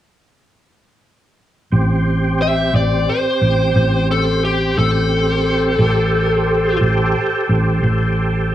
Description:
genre	blues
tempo	59 BPM (dotted quarters)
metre	12/8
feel	straight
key	A minor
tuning	A4 = 440 Hz
part	overdriven tonewheel organ	sustained chords	1.7-8.5 s	C4 to C5	-20 LUFS	right 2 dB	slow rotary speaker, chorus vibrato, cassette tape
part	hollow-body short-scale fingered electric bass	bass	1.7-8.5 s	A1	-17 LUFS	right 1 dB	none
part	biting lead guitar	melody	2.4-6.8 s	G4 to E5	-18 LUFS	left 3 dB	overdrive, cassette tape
room	light reverb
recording	home recording on cassette, small room reverb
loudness	-14 LUFS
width	side -12 dB against mid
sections	1.7-8.5 A section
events	none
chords	1.7 Am7

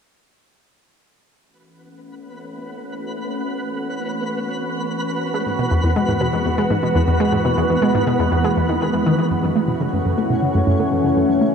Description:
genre	ambient, sequencer-driven space music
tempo	121 BPM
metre	4/4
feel	straight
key	unclear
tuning	A4 = 440 Hz
part	evolving wavetable pad	sustained chords	2.2-11.5 s	E3 to F#4	-21 LUFS	equal	phaser, built-in reverb, shimmer reverb
part	twinkling granular texture	texture	2.3-11.5 s	B3 to C#5	-26 LUFS	right 1 dB	built-in reverb, shimmer reverb
part	analog pluck	riff	5.3-11.5 s	E2 to A3	-19 LUFS	equal	chorus, ping-pong delay
part	vibraphone with medium mallets	arpeggios	9.3-11.5 s	C#4 to A4	-36 LUFS	right 3 dB	none
room	wet huge ambient reverb, RT60 8.7 s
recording	in a vast, echoing space, cassette tape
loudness	-17 LUFS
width	side -6 dB against mid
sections	1.4-9.3 A section; 9.3-11.5 B section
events	fade-in on ambient pad 1.4-9.3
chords	1.4 F#m7; 5.3 Eadd9; 9.3 F#m7

